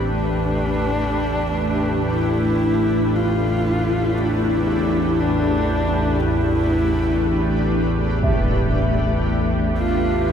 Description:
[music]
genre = dark ambient drone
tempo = free time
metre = none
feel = none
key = unclear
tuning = A4 = 440 Hz
[part]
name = dark horsehead fiddle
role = melody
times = 0.0-10.3 s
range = D4 to F4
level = -23 LUFS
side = left 1 dB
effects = ping-pong delay
[part]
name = granular cloud pad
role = sustained chords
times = 0.0-10.3 s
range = A3 to B4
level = -23 LUFS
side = equal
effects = built-in reverb
[part]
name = analog drone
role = drone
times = 0.0-10.3 s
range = A1 to E2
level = -22 LUFS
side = equal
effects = chorus
[part]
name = impact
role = percussion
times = 8.2-8.4 s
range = none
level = -26 LUFS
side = equal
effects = low-pass filter on sfx
[part]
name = bronze singing bowl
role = texture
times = 8.2-10.3 s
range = E5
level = -28 LUFS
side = equal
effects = none
[sound]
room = wet huge ambient reverb, RT60 7.6 s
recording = none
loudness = -17 LUFS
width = side -8 dB against mid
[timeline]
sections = 0.0-10.3 A section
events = fade-in on impacts and reversed cymbals 0.0-10.3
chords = 0.0 Asus2

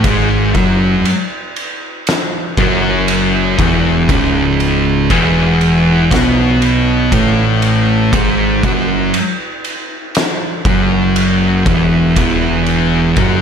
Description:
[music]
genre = stoner and doom metal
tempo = 59 BPM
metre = 4/4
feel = straight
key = C# minor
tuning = A4 = 441 Hz
[part]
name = thick fuzz guitar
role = riff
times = 0.0-13.4 s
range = C#2 to B3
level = -15 LUFS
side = left 11 dB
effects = distortion
[part]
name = thick fuzz guitar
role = riff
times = 0.0-13.4 s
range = C#2 to B3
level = -14 LUFS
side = right 9 dB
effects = distortion
[part]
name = growling picked electric bass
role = bass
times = 0.0-13.4 s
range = C#1 to B1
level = -18 LUFS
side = left 1 dB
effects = overdrive
[part]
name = oversized low-tuned drum kit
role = drums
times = 0.0-13.4 s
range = kick drum, ride cymbal, snare drum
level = -18 LUFS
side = equal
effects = none
[sound]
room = studio reverb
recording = none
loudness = -11 LUFS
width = side -7 dB against mid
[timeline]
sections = 0.0-13.4 A section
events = none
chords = 0.0 C#m; 12.2 E5

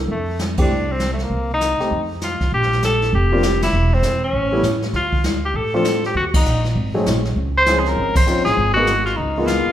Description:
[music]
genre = jazz, small-group swing and bop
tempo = 198 BPM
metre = 4/4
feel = swing 63% on 8ths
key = unclear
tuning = A4 = 440 Hz
[part]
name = upright bass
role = bass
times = 0.0-9.7 s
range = Fb1 to A2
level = -22 LUFS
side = equal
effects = none
[part]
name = warm tenor saxophone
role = melody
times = 0.1-9.7 s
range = A3 to C5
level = -20 LUFS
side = equal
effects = none
[part]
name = jazz brush drum kit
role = drums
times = 0.1-9.7 s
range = brushed snare drum, crash cymbal, hi-hat, kick drum, ride cymbal, snare drum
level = -23 LUFS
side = equal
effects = none
[part]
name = warm grand piano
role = accompaniment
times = 0.6-9.7 s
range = F3 to Ab4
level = -22 LUFS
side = left 1 dB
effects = none
[sound]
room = moderate recital hall reverb, RT60 1.2 s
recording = recorded in a church or concert hall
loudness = -16 LUFS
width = side -11 dB against mid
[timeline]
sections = 0.0-2.5 A section; 2.5-9.7 B section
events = band accent 0.5, 3.6, 6.3, 8.1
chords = 0.1 F; 1.3 Cm; 1.9 N.C.; 2.5 Bb5; 3.7 Dbmmaj7/Fb (rootless); 4.3 A7; 4.9 Dm; 6.1 Eb5; 6.8 Ab7b9; 7.4 Dbmaj9; 8.6 Abm7; 9.2 Db13

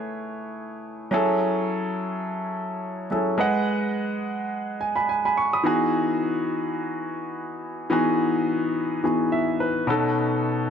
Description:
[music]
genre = disco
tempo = 106 BPM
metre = 4/4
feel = swing 56% on 16ths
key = unclear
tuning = A4 = 440 Hz
[part]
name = clear grand piano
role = solo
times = 0.0-10.7 s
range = B2 to D#6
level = -22 LUFS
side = equal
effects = none
[sound]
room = moderate echo chamber reverb, RT60 1.5 s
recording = none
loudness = -22 LUFS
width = side -7 dB against mid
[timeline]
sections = 0.0-5.7 A section; 5.7-10.7 B section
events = grand piano fill 9.0-10.2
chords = 0.0 Amaj7; 1.1 F#m9; 3.4 G#m7; 5.7 Emaj7; 9.9 B9

